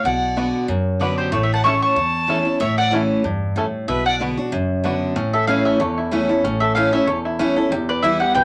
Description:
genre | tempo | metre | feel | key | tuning
bluegrass | 188 BPM | 4/4 | swing 55% on 8ths | unclear | A4 = 440 Hz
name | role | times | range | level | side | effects
mandolin | melody | 0.0-8.4 s | C5 to C#6 | -22 LUFS | equal | none
clear fiddle | second line | 0.0-4.2 s | G4 to A5 | -28 LUFS | equal | none
picked steel-string acoustic guitar | accompaniment | 0.0-8.4 s | E2 to F#4 | -22 LUFS | equal | none
upright bass | bass | 0.0-8.4 s | E1 to F#2 | -31 LUFS | equal | none
bluegrass banjo | melody | 0.4-8.4 s | B3 to B4 | -28 LUFS | equal | none
room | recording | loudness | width
moderate club ambience, RT60 0.5 s | none | -19 LUFS | mono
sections
0.0-5.2 A section; 5.2-8.4 B section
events
none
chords
0.0 Bm; 1.3 A; 3.9 Bm; 5.2 A; 7.7 Em

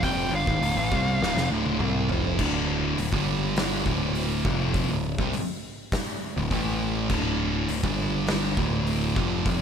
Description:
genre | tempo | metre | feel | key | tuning
stoner and doom metal | 102 BPM | 4/4 | straight | D minor | A4 = 439 Hz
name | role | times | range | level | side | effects
fuzz lead guitar | melody | 0.0-1.5 s | F5 to G5 | -29 LUFS | equal | distortion, ping-pong delay
thick fuzz guitar | riff | 0.0-9.6 s | D2 to C4 | -29 LUFS | left 10 dB | distortion
thick fuzz guitar | riff | 0.0-9.6 s | D2 to C4 | -28 LUFS | right 11 dB | distortion
growling picked electric bass | bass | 0.0-9.6 s | D1 to C2 | -30 LUFS | equal | overdrive
oversized low-tuned drum kit | drums | 0.0-9.6 s | crash cymbal, hi-hat, kick drum, snare drum, toms | -29 LUFS | equal | none
room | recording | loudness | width
little or no reverb | none | -23 LUFS | side -7 dB against mid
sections
0.0-2.4 A section; 2.4-9.6 B section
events
lead electric guitar solo 0.0-2.4; drum fill 1.2-2.4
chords
0.0 Dm; 2.4 D5; 3.1 G5; 3.9 Dm; 6.5 A5; 7.1 D5; 7.8 G5; 8.6 Dm

